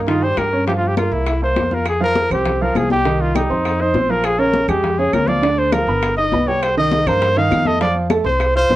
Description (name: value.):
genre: Afro-Cuban jazz.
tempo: 202 BPM.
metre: 4/4.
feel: straight.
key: F minor.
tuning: A4 = 437 Hz.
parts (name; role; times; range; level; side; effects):
warm upright piano; accompaniment; 0.0-8.8 s; Db3 to F6; -20 LUFS; right 3 dB; none.
upright bass; bass; 0.0-8.8 s; G1 to G2; -22 LUFS; equal; none.
clear trumpet; melody; 0.1-8.8 s; Eb4 to F5; -18 LUFS; equal; none.
bongos; percussion; 0.1-8.8 s; none; -27 LUFS; left 5 dB; none.
congas; percussion; 0.1-8.8 s; none; -24 LUFS; left 4 dB; none.
claves; percussion; 0.4-8.6 s; none; -31 LUFS; right 6 dB; none.
room: light reverb.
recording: worn, warbling old tape, cassette tape, warbly pitch drift.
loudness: -15 LUFS.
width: side -15 dB against mid.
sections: 0.0-1.9 A section; 1.9-8.8 B section.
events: none.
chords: 0.0 Cm7; 0.7 C7sus4; 1.3 C7; 1.9 Fsus24; 3.1 Cm; 3.6 F5; 4.2 Bbm7; 5.4 G7#9; 6.0 Gaug; 6.6 Cm7; 7.8 F.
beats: 0.08 0.37 | 0.67 0.97 1.27 1.57 | 1.86 2.16 2.46 2.76 | 3.06 3.35 3.65 3.95 | 4.24 4.54 4.84 5.14 | 5.43 5.73 6.03 6.33 | 6.62 6.92 7.22 7.51 | 7.81 8.11 8.40 8.70.